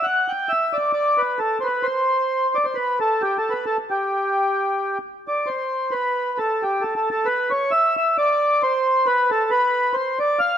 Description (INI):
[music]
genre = musette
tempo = 134 BPM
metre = 3/4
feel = swing 55% on 8ths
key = G major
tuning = A4 = 440 Hz
[part]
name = mellow accordion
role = solo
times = 0.0-10.6 s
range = G4 to G5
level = -19 LUFS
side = equal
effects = none
[sound]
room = light reverb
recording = none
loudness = -19 LUFS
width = side -9 dB against mid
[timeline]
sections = 0.0-5.5 A section; 5.5-10.6 B section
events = none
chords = none